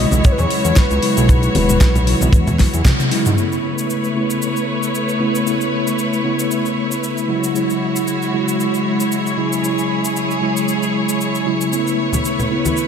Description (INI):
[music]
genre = nu-disco, nu disco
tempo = 115 BPM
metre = 4/4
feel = swing 55% on 16ths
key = unclear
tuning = A4 = 440 Hz
[part]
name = soft octave-layered synth lead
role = melody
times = 0.0-2.8 s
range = B4 to D#5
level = -23 LUFS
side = left 2 dB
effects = chorus, diffuse ambient delay
[part]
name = mellow tine electric piano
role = accompaniment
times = 0.0-12.9 s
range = C#3 to E4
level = -20 LUFS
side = equal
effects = medium stereo tremolo, sidechain pumping, diffuse ambient delay
[part]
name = clear studio string section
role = sustained chords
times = 0.0-12.9 s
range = G#3 to C#5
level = -21 LUFS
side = equal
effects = sidechain pumping, low-pass filter
[part]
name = fat analog bass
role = bass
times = 0.0-3.3 s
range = E1 to G#2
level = -18 LUFS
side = equal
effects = none
[part]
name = pop drum kit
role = drums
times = 0.1-12.9 s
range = cabasa, hi-hat, snare drum, toms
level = -24 LUFS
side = left 1 dB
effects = none
[part]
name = congas and cabasa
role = percussion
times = 0.1-3.4, 11.7-12.9 s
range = none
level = -23 LUFS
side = left 2 dB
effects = none
[part]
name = kick drum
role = drums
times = 0.2-3.0 s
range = none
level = -13 LUFS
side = equal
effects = none
[sound]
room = moderate lush hall reverb, RT60 2.7 s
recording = dreamy mix soaked in reverb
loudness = -15 LUFS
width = side -7 dB against mid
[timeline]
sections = 0.0-3.4 A section; 3.4-12.9 B section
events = drum fill 2.6-3.4; band accent 2.9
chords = 0.0 E69; 3.4 B9sus4; 7.3 E69; 11.7 B9sus4